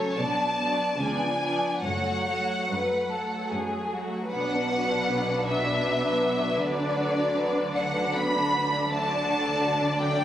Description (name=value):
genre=classical, slow romantic movement for string orchestra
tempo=68-84 BPM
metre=3/4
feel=rubato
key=F# minor, B minor from 4.3 s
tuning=A4 = 440 Hz
part: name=rich studio violin section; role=melody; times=0.0-10.2 s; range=C#5 to B5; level=-28 LUFS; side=left 1 dB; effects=none
part: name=rich studio violin section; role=second line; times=0.0-10.2 s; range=A3 to D5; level=-29 LUFS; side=left 1 dB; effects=none
part: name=rich studio viola section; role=accompaniment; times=0.0-10.2 s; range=E#3 to D4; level=-32 LUFS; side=right 2 dB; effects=none
part: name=rich studio cello section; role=bass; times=0.0-10.2 s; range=F#2 to D3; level=-32 LUFS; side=right 1 dB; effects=none
part: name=rich studio double bass section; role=bass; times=0.0-10.2 s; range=F#1 to D2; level=-36 LUFS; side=right 2 dB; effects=none
room=moderate scoring stage reverb, RT60 1.9 s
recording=recorded on a phone in the room, club ambience, compression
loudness=-24 LUFS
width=side -11 dB against mid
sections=0.0-4.3 A section; 4.3-10.2 B section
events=none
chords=0.2 Bm7; 1.0 C#7b9; 1.8 F#m; 4.3 Bm; 6.6 Bm/D